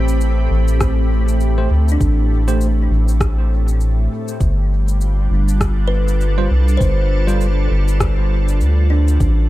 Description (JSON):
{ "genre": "ambient dub", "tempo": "100 BPM", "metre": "4/4", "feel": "swing 58% on 16ths", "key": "unclear", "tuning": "A4 = 440 Hz", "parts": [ { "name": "soft additive organ-like pad", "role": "sustained chords", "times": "0.0-9.5 s", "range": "A2 to B5", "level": "-23 LUFS", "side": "equal", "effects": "ensemble chorus, built-in reverb" }, { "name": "kalimba", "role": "arpeggios", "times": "0.0-9.5 s", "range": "D4 to C5", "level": "-27 LUFS", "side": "equal", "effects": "dub echo" }, { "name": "round analog bass", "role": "bass", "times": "0.0-9.5 s", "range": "G1 to D2", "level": "-15 LUFS", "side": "equal", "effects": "none" }, { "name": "electronic cabasa and rim click", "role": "drums", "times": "0.1-9.3 s", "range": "none", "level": "-27 LUFS", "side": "left 2 dB", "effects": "dub echo" }, { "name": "electronic kick drum", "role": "drums", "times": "0.8-9.3 s", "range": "none", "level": "-19 LUFS", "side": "equal", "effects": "none" }, { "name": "bell-like tine electric piano", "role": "stabs", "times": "1.6-2.7, 6.4-7.5 s", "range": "G3 to C5", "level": "-28 LUFS", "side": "right 3 dB", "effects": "medium stereo tremolo, dub echo" } ], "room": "digital ambience", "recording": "dark, warm production", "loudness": "-14 LUFS", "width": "side -16 dB against mid", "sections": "0.0-9.5 A section", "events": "none", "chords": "0.0 Am7; 4.4 G7sus4", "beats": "0.21 0.81 1.41 | 2.01 2.61 3.21 3.81 | 4.41 5.01 5.61 6.21 | 6.81 7.41 8.01 8.61 | 9.21" }